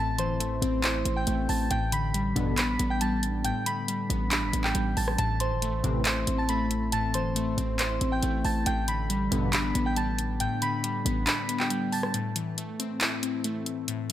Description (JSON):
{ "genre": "hip hop, trap", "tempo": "138 BPM", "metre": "4/4", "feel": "half-time", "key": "A minor", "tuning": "A4 = 440 Hz", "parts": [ { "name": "soft synth bell", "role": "melody", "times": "0.0-12.1 s", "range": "C5 to B6", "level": "-31 LUFS", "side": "right 1 dB", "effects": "chorus, low-pass filter, tape echo" }, { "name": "glassy digital keys", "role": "accompaniment", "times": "0.0-14.1 s", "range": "A2 to E4", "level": "-30 LUFS", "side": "left 2 dB", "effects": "chorus, low-pass filter" }, { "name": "hard-hitting 808-style bass", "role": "bass", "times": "0.0-11.3 s", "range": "G1 to A1", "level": "-30 LUFS", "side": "equal", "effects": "none" }, { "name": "trap drum kit", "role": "drums", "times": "0.2-14.1 s", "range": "handclaps, hi-hat, rim click", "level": "-29 LUFS", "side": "equal", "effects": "none" }, { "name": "chorused polysynth", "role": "stabs", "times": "2.4-2.5, 5.8-6.0, 9.3-9.5 s", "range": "G2 to E3", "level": "-32 LUFS", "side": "equal", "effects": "none" } ], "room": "light reverb", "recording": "none", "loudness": "-25 LUFS", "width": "side -12 dB against mid", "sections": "0.0-12.1 A section; 12.1-14.1 B section", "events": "kick muted 11.3-12.1; break 12.1-14.1", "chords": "0.0 Am; 1.7 G/A; 5.2 Am; 8.7 G/A; 12.1 Am" }